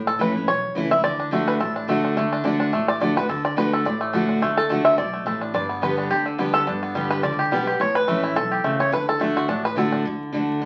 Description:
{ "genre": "bluegrass", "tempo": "213 BPM", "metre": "4/4", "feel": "swing 54% on 8ths", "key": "D major", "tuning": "A4 = 440 Hz", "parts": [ { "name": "picked steel-string acoustic guitar", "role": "accompaniment", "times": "0.0-10.7 s", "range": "E2 to G4", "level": "-26 LUFS", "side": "equal", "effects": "none" }, { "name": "upright bass", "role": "bass", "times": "0.0-10.7 s", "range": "G1 to D2", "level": "-40 LUFS", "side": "equal", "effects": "none" }, { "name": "bluegrass banjo", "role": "melody", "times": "0.1-10.1 s", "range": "D3 to E5", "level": "-24 LUFS", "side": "equal", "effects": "none" } ], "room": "wet studio reverb, RT60 0.6 s", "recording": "very old 78 rpm record, vinyl crackle", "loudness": "-22 LUFS", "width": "mono", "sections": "0.0-10.1 A section", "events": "five-string banjo solo 0.0-10.1", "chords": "0.0 A; 1.0 D; 5.5 G; 7.8 A; 8.9 D", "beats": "0.20 0.48 0.76 | 1.04 1.32 1.60 1.89 | 2.17 2.45 2.73 3.01 | 3.29 3.57 3.86 4.14 | 4.42 4.70 4.98 5.26 | 5.54 5.83 6.11 6.39 | 6.67 6.95 7.24 7.52 | 7.80 8.08 8.36 8.64 | 8.93 9.21 9.49 9.77 | 10.05 10.34 10.62" }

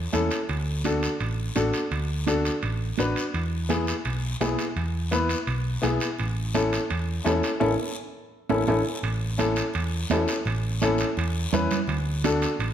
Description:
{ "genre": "latin, cumbia", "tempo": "168 BPM", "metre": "4/4", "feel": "straight", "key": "A major", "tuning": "A4 = 442 Hz", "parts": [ { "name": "hollow-body short-scale picked electric bass", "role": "bass", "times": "0.0-12.7 s", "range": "A1 to E2", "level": "-28 LUFS", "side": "right 1 dB", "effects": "none" }, { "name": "warm upright piano", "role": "accompaniment", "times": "0.1-12.5 s", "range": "B3 to B4", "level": "-27 LUFS", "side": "left 3 dB", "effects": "none" }, { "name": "congas", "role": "percussion", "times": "0.1-12.7 s", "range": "none", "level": "-32 LUFS", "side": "right 9 dB", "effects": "none" }, { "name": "guiro", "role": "percussion", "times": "0.1-12.7 s", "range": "none", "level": "-37 LUFS", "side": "left 4 dB", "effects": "none" }, { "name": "timbales", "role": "percussion", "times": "0.1-12.7 s", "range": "none", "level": "-33 LUFS", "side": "right 5 dB", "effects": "none" } ], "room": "moderate large studio reverb, RT60 1.4 s", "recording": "none", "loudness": "-23 LUFS", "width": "side -9 dB against mid", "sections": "0.0-9.0 A section; 9.0-12.7 A section", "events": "drum fill 7.6-9.0; band accent 7.6-9.0", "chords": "0.5 D; 3.3 E; 6.2 A; 11.9 D", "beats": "0.14 | 0.49 0.85 1.21 1.56 | 1.92 2.27 2.63 2.99 | 3.34 3.70 4.05 4.41 | 4.77 5.12 5.48 5.83 | 6.19 6.55 6.90 7.26 | 7.62 7.97 8.33 8.68 | 9.04 9.39 9.75 10.11 | 10.46 10.82 11.17 11.53 | 11.88 12.24 12.59" }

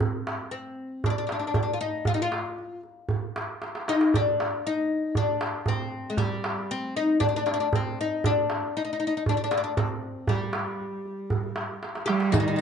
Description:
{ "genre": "Arabic maqam ensemble", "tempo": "117 BPM", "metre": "4/4", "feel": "straight", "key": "G maqam hijaz", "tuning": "A4 = 441 Hz", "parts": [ { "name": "darbuka", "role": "percussion", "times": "0.0-12.5 s", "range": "none", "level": "-28 LUFS", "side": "right 3 dB", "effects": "none" }, { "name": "oud", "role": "melody", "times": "0.5-12.6 s", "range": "G3 to G4", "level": "-27 LUFS", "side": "left 3 dB", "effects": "none" }, { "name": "rich cello", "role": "second line", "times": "12.1-12.6 s", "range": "Eb3 to G3", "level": "-25 LUFS", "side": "right 4 dB", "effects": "none" }, { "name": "mellow duduk", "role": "drone", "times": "12.3-12.6 s", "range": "G3", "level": "-32 LUFS", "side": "equal", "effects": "none" }, { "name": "riq", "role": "percussion", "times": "12.3-12.6 s", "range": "none", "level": "-35 LUFS", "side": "left 8 dB", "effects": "none" } ], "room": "light reverb", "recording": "dark, warm production, nothing above 10.9 kHz", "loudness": "-25 LUFS", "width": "side -7 dB against mid", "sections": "0.0-12.3 A section", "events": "drum fill 3.6-4.1, 11.8-12.3", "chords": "none", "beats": "| 0.02 0.53 1.04 1.56 | 2.07 2.58 3.10 3.61 | 4.12 4.64 5.15 5.66 | 6.18 6.69 7.20 7.72 | 8.23 8.74 9.26 9.77 | 10.28 10.79 11.31 11.82 | 12.33" }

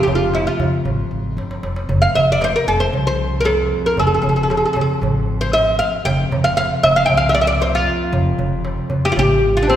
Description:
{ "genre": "Arabic maqam ensemble", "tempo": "116 BPM", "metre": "4/4", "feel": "straight", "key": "F maqam rast", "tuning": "A4 = 440 Hz", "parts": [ { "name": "oud", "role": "melody", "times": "0.0-9.8 s", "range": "C4 to G5", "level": "-16 LUFS", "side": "equal", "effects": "none" }, { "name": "dark cello", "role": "drone", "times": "0.0-9.8 s", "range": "F2", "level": "-27 LUFS", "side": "equal", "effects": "none" }, { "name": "upright bass", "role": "bass", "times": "0.1-9.8 s", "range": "F1 to F2", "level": "-22 LUFS", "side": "left 1 dB", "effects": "none" }, { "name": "darbuka", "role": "percussion", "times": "0.1-9.8 s", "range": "none", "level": "-22 LUFS", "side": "equal", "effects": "none" }, { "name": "dark violin", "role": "second line", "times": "9.7-9.8 s", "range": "C5", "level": "-16 LUFS", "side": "left 7 dB", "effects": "none" } ], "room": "wet scoring stage reverb, RT60 1.8 s", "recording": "recorded in a church or concert hall", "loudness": "-15 LUFS", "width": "side -11 dB against mid", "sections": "0.0-9.8 A section", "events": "drum fill 1.4-1.9", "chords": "none", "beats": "0.34 0.86 1.38 | 1.89 2.41 2.93 3.45 | 3.97 4.49 5.01 5.53 | 6.05 6.57 7.09 7.61 | 8.13 8.65 9.17 9.69" }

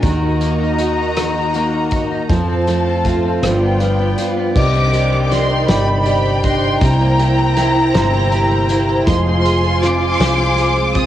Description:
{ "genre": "six-eight pop ballad", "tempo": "53 BPM (dotted quarters)", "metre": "6/8", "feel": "straight", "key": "unclear", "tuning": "A4 = 439 Hz", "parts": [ { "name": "direct-recorded clean electric guitar", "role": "accompaniment", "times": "0.0-11.1 s", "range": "G2 to D5", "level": "-20 LUFS", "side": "left 1 dB", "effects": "double-tracked left and right" }, { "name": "warm studio string section", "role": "sustained chords", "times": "0.0-11.1 s", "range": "Eb3 to C6", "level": "-20 LUFS", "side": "left 1 dB", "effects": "none" }, { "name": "picked steel-string acoustic guitar", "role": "arpeggios", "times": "0.0-11.1 s", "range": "Eb3 to Gb4", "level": "-22 LUFS", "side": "right 4 dB", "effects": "analog delay" }, { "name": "woody fretless electric bass", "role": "bass", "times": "0.0-11.1 s", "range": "F1 to F2", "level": "-19 LUFS", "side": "equal", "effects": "wide subtle chorus" }, { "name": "loose indie drum kit", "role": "drums", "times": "0.0-11.1 s", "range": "crash cymbal, hi-hat, kick drum, rim click, snare drum", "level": "-22 LUFS", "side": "equal", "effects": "cassette tape" }, { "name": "clear studio violin section", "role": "second line", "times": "4.6-11.1 s", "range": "Bb5 to Eb6", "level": "-20 LUFS", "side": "equal", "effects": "none" } ], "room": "light reverb, studio reverb", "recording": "home recording on cassette", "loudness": "-13 LUFS", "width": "side -12 dB against mid", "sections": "0.0-4.6 A section; 4.6-11.1 B section", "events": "none", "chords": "0.0 Ebm; 2.3 F; 3.4 G7; 4.6 Cmadd9; 6.8 C7; 9.1 Fm", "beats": "| 0.03 1.16 | 2.29 3.42 | 4.55 5.68 | 6.81 7.94 | 9.07 10.20" }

